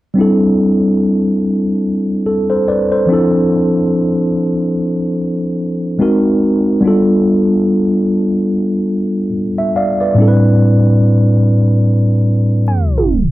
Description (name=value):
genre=hip hop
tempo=72 BPM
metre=4/4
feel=swing 58% on 16ths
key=C major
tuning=A4 = 439 Hz
part: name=mellow tine electric piano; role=solo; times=0.1-13.3 s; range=A2 to A5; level=-11 LUFS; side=equal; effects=medium stereo tremolo, cassette tape, low-pass filter
room=wet studio reverb, RT60 0.6 s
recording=cassette tape, tape stop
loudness=-11 LUFS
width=side -17 dB against mid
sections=0.2-13.3 A section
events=tape stop 12.7-13.3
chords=0.2 C6; 3.1 Dm7; 6.0 Ab9; 6.8 G7; 10.2 Am11